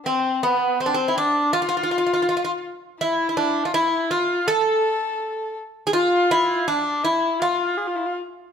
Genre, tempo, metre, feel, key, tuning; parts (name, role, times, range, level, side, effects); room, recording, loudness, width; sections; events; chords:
Turkish makam ensemble; 82 BPM; 4/4; straight; A4 = 439 Hz
Greek bouzouki; melody; 0.1-8.1 s; B3 to A4; -21 LUFS; right 1 dB; slapback echo
rich kamancheh; second line; 0.1-8.2 s; B3 to A4; -24 LUFS; left 3 dB
light reverb; close, detailed microphones; -19 LUFS; side -7 dB against mid
0.0-8.5 A section